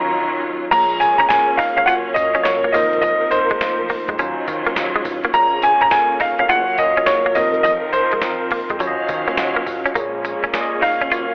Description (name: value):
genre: R&B, new jack swing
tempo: 104 BPM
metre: 4/4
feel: swing 65% on 16ths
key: Bb minor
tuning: A4 = 440 Hz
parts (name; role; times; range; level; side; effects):
- clear concert grand piano; melody; 0.0-11.3 s; C5 to Bb5; -19 LUFS; equal; none
- tine electric piano; accompaniment; 0.0-11.3 s; Gb3 to Ab5; -28 LUFS; equal; phaser
- warm symphonic string section; sustained chords; 0.0-11.3 s; Eb3 to F5; -28 LUFS; equal; none
- direct-recorded clean electric guitar; riff; 0.7-11.2 s; F3 to F4; -25 LUFS; equal; analog chorus
- smooth synth bass; bass; 0.7-11.3 s; F1 to Eb3; -35 LUFS; equal; none
- boom bap sampler-style drum kit; drums; 0.7-11.3 s; crash cymbal, hi-hat, kick drum, snare drum, tambourine; -29 LUFS; equal; none
room: light reverb, digital ambience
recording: telephone sound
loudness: -18 LUFS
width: mono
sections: 0.7-11.3 A section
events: break 0.0-0.7; tine electric piano fill 8.8-10.0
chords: 0.0 Ebm9; 0.7 Bbm7; 1.9 Gbmaj7; 2.7 F7sus4; 4.2 Ebm9; 5.3 Bbm7; 6.5 Gbmaj7; 7.4 F7sus4; 8.8 Ebm9; 10.0 Bbm7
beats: 0.15 | 0.72 1.30 1.88 2.46 | 3.03 3.61 4.19 4.76 | 5.34 5.92 6.49 7.07 | 7.65 8.22 8.80 9.38 | 9.96 10.53 11.11